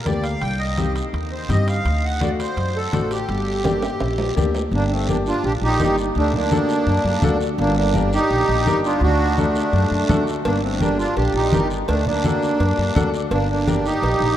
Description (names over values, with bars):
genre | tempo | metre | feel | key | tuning
latin, cumbia | 168 BPM | 4/4 | straight | G minor, G harmonic minor from 4.7 s | A4 = 440 Hz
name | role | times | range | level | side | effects
accordion | melody | 0.0-14.4 s | A3 to G5 | -21 LUFS | right 1 dB | light tremolo tuning
bright upright piano | accompaniment | 0.1-13.9 s | A3 to A5 | -27 LUFS | left 4 dB | none
upright bass | bass | 0.1-14.3 s | G1 to G2 | -22 LUFS | equal | none
congas | percussion | 0.1-14.2 s | none | -26 LUFS | left 1 dB | none
guiro | percussion | 0.1-14.4 s | none | -37 LUFS | right 4 dB | none
timbales and cowbell | percussion | 0.1-4.6, 10.5-14.2 s | none | -32 LUFS | right 2 dB | none
room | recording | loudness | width
wet cathedral reverb, RT60 6.3 s | in a vast, echoing space | -17 LUFS | side -11 dB against mid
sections
0.0-4.7 A section; 4.7-14.4 B section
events
drum fill 3.6-4.7; upright piano fill 12.6-13.3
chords
0.4 Cm; 1.9 D7; 3.3 Gm; 6.2 D; 7.6 Gm; 9.0 D; 10.5 Gm; 11.9 D; 13.3 Gm